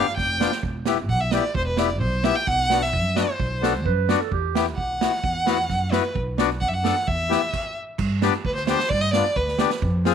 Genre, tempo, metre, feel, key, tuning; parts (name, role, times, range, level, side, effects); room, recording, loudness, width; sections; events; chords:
klezmer; 130 BPM; 2/4; straight; E minor; A4 = 440 Hz
rich violin; melody; 0.0-9.7 s; B4 to G5; -24 LUFS; right 1 dB
accordion; accompaniment; 0.0-10.1 s; B3 to A4; -24 LUFS; left 13 dB
upright bass; bass; 0.2-10.1 s; E1 to G2; -26 LUFS; right 1 dB
street-band drum kit; drums; 0.2-10.1 s; crash cymbal, kick drum, snare drum; -27 LUFS; right 6 dB
mellow clarinet; second line; 3.6-4.6 s; G4 to B4; -27 LUFS; right 17 dB
light reverb, small room ambience; 1960s-style stereo with parts hard left and right; -20 LUFS; side -8 dB against mid
0.6-8.0 A section; 8.0-10.1 B section
stop 7.5-8.0
0.0 G; 0.6 Em; 2.5 Bm; 4.3 E5; 6.1 Bm; 7.1 Em; 7.5 N.C.; 8.0 G